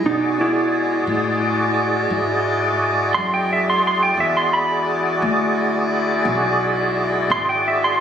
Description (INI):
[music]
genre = slow blues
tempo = 58 BPM (dotted quarters)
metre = 12/8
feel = straight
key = unclear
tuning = A4 = 440 Hz
[part]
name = clean lap steel guitar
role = second line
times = 0.0-8.0 s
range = D#4 to C6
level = -19 LUFS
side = right 2 dB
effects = none
[part]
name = clear horn section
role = sustained chords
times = 0.0-8.0 s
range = G#3 to E4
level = -25 LUFS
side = left 2 dB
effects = none
[part]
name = tonewheel organ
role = sustained chords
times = 0.0-8.0 s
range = F#4 to D5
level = -20 LUFS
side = equal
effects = overdrive, chorus vibrato, slow rotary speaker
[part]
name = upright bass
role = bass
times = 0.0-8.0 s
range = G#1 to B2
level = -27 LUFS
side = left 2 dB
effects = none
[sound]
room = light reverb, small room ambience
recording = recorded on a phone in the room, studio reverb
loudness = -16 LUFS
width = side -8 dB against mid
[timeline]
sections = 0.0-8.0 A section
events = electric slide guitar solo 0.0-8.0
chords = 0.0 E9